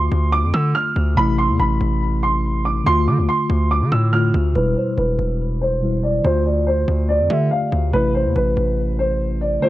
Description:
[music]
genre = hip hop, drill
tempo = 142 BPM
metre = 4/4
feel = half-time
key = unclear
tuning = A4 = 440 Hz
[part]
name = dark concert grand piano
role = melody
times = 0.0-9.7 s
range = B4 to F6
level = -21 LUFS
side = right 1 dB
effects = low-pass filter
[part]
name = tine electric piano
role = accompaniment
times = 0.0-9.7 s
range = B2 to G4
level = -23 LUFS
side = left 1 dB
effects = medium stereo tremolo, low-pass filter
[part]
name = distorted 808-style bass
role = bass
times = 0.0-9.6 s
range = E1 to D3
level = -19 LUFS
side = equal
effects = distortion
[sound]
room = light reverb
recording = worn, warbling old tape, cassette tape, warbly pitch drift, nothing above 10.8 kHz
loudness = -16 LUFS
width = side -15 dB against mid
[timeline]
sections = 0.0-4.6 A section; 4.6-9.7 B section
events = filter sweep 4.6-9.7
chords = 0.0 Dm; 1.2 Am; 2.9 Dm; 4.6 Em; 6.2 Dm; 7.9 Am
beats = 0.33 0.75 | 1.17 1.60 2.02 2.44 | 2.86 3.29 3.71 4.13 | 4.55 4.98 5.40 5.82 | 6.24 6.67 7.09 7.51 | 7.93 8.36 8.78 9.20 | 9.62

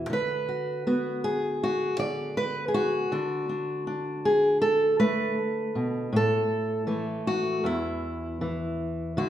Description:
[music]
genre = folk, solo fingerstyle acoustic guitar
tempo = 80 BPM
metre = 4/4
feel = straight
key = unclear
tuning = A4 = 440 Hz
[part]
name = fingerpicked steel-string acoustic guitar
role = solo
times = 0.0-9.3 s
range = E2 to D5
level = -25 LUFS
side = equal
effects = none
[sound]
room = wet recital hall reverb, RT60 1.3 s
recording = recorded in a church or concert hall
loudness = -25 LUFS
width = side -11 dB against mid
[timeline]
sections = 0.0-9.2 A section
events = none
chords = 0.1 Bm/D; 3.1 D6; 6.1 A5; 7.6 N.C.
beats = | 0.10 0.86 1.61 2.36 | 3.12 3.87 4.62 5.38 | 6.13 6.88 7.64 8.41 | 9.18

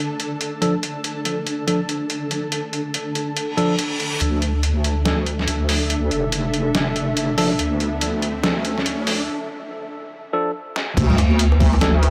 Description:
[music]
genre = deep dubstep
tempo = 142 BPM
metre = 4/4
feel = swing 61% on 16ths, half-time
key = D minor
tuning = A4 = 440 Hz
[part]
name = granular cloud pad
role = sustained chords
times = 0.0-12.1 s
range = D4 to A5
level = -29 LUFS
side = equal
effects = built-in reverb, vintage 12-bit sampler grit
[part]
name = trip hop sampler-style drum kit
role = drums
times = 0.2-12.1 s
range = crash cymbal, hi-hat, snare drum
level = -28 LUFS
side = equal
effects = overdrive
[part]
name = tine electric piano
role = stabs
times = 0.6-11.9 s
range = F3 to A4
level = -28 LUFS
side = equal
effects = dub echo
[part]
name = reverse cymbal, riser and sub drop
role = sound effects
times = 3.5-12.1 s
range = none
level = -32 LUFS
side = equal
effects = none
[part]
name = wobble bass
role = bass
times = 4.2-12.1 s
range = F1 to D2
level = -22 LUFS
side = equal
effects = chorus
[part]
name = electronic kick drum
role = drums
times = 11.0-11.7 s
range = none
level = -22 LUFS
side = equal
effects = overdrive
[part]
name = bongos and congas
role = percussion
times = 11.0-12.1 s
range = none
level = -26 LUFS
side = equal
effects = dub echo
[sound]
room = light reverb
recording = high-pass filter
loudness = -21 LUFS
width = mono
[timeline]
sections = 0.0-4.2 A section; 4.2-11.0 B section; 11.0-12.1 C section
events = reverse cymbal 3.5-4.2; build-up 4.2-11.0; break 9.3-11.0; drum fill 10.8; drop 11.0-12.1; impact 11.0-12.1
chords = 0.0 D5; 4.2 Dm; 11.0 D5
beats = 0.41 | 0.83 1.25 1.68 2.10 | 2.52 2.94 3.37 3.79 | 4.21 4.63 5.06 5.48 | 5.90 6.32 6.75 7.17 | 7.59 8.01 8.44 8.86 | 9.28 9.70 10.13 10.55 | 10.97 11.39 11.82

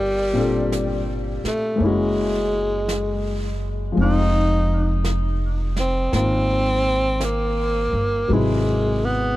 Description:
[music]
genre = jazz ballad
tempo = 56 BPM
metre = 4/4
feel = swing 66% on 8ths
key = unclear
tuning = A4 = 440 Hz
[part]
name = breathy tenor saxophone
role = melody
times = 0.0-9.4 s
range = G3 to Eb4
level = -22 LUFS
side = equal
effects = tape echo
[part]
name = upright bass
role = bass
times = 0.0-9.4 s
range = F1 to Ab1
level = -23 LUFS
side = equal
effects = none
[part]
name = warm baby grand piano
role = accompaniment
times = 0.3-9.4 s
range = Bb2 to B4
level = -24 LUFS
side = left 3 dB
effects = none
[part]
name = jazz brush drum kit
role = drums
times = 0.7-9.4 s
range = brushed snare drum, hi-hat, snare drum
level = -35 LUFS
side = right 2 dB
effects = none
[sound]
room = little or no reverb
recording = dry, close 1970s-style studio recording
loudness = -19 LUFS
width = side -16 dB against mid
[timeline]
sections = 0.0-9.4 A section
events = none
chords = 0.0 Gm11; 1.8 Gb9; 4.0 Fm7; 8.3 Ab7alt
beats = 0.72 1.81 2.89 | 3.97 5.05 6.13 7.21 | 8.29

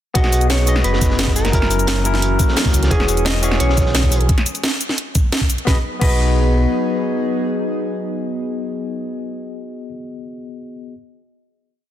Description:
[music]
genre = liquid drum and bass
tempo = 174 BPM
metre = 4/4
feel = straight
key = B major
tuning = A4 = 440 Hz
[part]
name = barky tine electric piano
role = accompaniment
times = 0.1-11.0 s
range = E3 to D#5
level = -24 LUFS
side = left 1 dB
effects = medium stereo tremolo, dub echo
[part]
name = crunchy breakbeat drum kit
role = drums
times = 0.1-4.2 s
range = hi-hat, snare drum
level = -28 LUFS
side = equal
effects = high-pass filter on hats, high-pass filter on snare, high-pass filter on room
[part]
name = mellow electric guitar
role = melody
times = 0.2-9.9 s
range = F#4 to D#5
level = -26 LUFS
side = equal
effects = ping-pong delay
[part]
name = airy breathy pad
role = sustained chords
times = 0.2-9.2 s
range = E3 to G#4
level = -25 LUFS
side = left 1 dB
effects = chorus
[part]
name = sub bass with octave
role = bass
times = 0.2-6.7 s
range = E1 to C#2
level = -18 LUFS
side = equal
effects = none
[part]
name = drum and bass drum kit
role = drums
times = 0.2-6.1 s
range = crash cymbal, hi-hat, shaker, snare drum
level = -21 LUFS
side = equal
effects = overdrive
[part]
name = electronic kick drum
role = drums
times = 0.2-6.1 s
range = none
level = -17 LUFS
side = equal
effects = none
[sound]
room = light reverb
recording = dense, heavily limited modern master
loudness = -15 LUFS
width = side -11 dB against mid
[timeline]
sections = 0.2-5.7 drop; 5.7-8.4 final chord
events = drop 0.2-5.7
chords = 0.2 B6; 1.5 F#7; 2.9 E69; 4.3 N.C.; 5.7 B6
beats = | 0.15 0.50 0.84 1.19 | 1.53 1.88 2.22 2.57 | 2.91 3.26 3.60 3.95 | 4.29 4.63 4.98 5.33 | 5.67 6.01 6.36 6.70 | 7.05 7.39 7.74 8.08

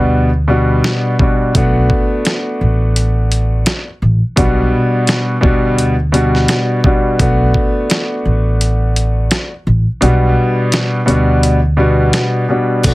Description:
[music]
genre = hip hop, boom-bap hip-hop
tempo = 85 BPM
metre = 4/4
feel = swing 58% on 16ths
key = unclear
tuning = A4 = 440 Hz
[part]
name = clear upright piano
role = accompaniment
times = 0.0-12.9 s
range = B2 to F#4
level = -14 LUFS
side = equal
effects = cassette tape
[part]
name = upright bass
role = bass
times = 0.0-12.9 s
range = A1 to D2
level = -14 LUFS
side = equal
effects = none
[part]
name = dusty soul sampler-style drum kit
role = drums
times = 0.8-12.9 s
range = crash cymbal, hi-hat, kick drum, snare drum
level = -16 LUFS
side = equal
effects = none
[part]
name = sleigh bells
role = percussion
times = 12.8-12.9 s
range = none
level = -25 LUFS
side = right 4 dB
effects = none
[sound]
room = light reverb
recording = heavily compressed radio sound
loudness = -11 LUFS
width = side -19 dB against mid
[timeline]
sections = 0.0-12.8 A section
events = break 0.0-1.5; kick muted 10.0-12.8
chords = 0.0 Gmaj7; 1.5 Bm7; 4.4 Gmaj7/B; 7.2 Bm7; 10.0 Gmaj7/B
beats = 0.14 0.84 | 1.55 2.25 2.96 3.67 | 4.37 5.08 5.79 6.49 | 7.20 7.90 8.61 9.31 | 10.02 10.73 11.43 12.14 | 12.84

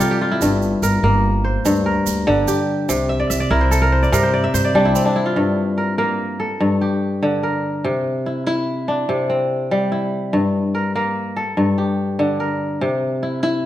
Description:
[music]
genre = west african traditional, West African string and xylophone music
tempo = 97 BPM (dotted quarters)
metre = 12/8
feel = straight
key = G dorian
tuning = A4 = 441 Hz
[part]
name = kora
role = arpeggios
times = 0.0-13.7 s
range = G2 to E5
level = -17 LUFS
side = equal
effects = none
[part]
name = egg shaker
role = percussion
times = 0.0-5.0 s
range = none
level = -30 LUFS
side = right 11 dB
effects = none
[part]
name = upright bass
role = bass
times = 0.4-4.9 s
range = G1 to G2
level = -20 LUFS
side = equal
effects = none
[sound]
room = wet recital hall reverb, RT60 1.4 s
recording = none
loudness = -16 LUFS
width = side -13 dB against mid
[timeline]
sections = 0.0-5.4 A section; 5.4-13.7 B section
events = kora fill 0.0-0.4, 3.1-5.4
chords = 0.4 Gm; 2.9 C; 5.4 Gm; 7.8 C; 10.3 Gm; 12.8 C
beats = | 0.41 1.03 1.65 2.27 | 2.89 3.51 4.13 4.75 | 5.37 5.99 6.61 7.23 | 7.85 8.47 9.09 9.71 | 10.33 10.95 11.57 12.19 | 12.81 13.43

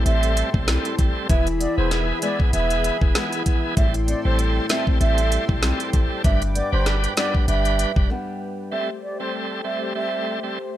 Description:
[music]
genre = dancehall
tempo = 97 BPM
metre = 4/4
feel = swing 56% on 16ths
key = A minor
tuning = A4 = 440 Hz
[part]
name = bright tonewheel organ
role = accompaniment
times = 0.0-10.6 s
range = E3 to B4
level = -27 LUFS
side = right 1 dB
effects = overdrive, fast rotary speaker, sidechain pumping
[part]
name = warm analog pad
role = sustained chords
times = 0.0-10.8 s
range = A3 to D6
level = -32 LUFS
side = left 1 dB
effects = chorus, tremolo, sidechain pumping
[part]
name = flamenco guitar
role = arpeggios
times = 0.0-9.3 s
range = G2 to E4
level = -29 LUFS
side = left 2 dB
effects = none
[part]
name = baroque flute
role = melody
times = 0.1-10.4 s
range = C5 to E5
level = -28 LUFS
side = right 2 dB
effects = none
[part]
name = clean 808-style bass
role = bass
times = 0.1-8.1 s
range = E1 to B1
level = -22 LUFS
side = equal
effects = none
[part]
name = afro-pop drum kit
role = drums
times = 0.1-8.1 s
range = hi-hat, kick drum, rim click, snare drum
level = -22 LUFS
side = equal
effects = none
[sound]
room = little or no reverb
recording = none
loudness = -19 LUFS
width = side -13 dB against mid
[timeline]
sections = 0.0-8.7 A section; 8.7-10.8 B section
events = break 8.1-8.7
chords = 0.0 Am7; 1.3 E; 3.8 Am7; 6.2 G; 8.7 Am7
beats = 0.06 0.68 | 1.29 1.91 2.53 3.15 | 3.77 4.39 5.01 5.62 | 6.24 6.86 7.48 8.10 | 8.72 9.34 9.96 10.57

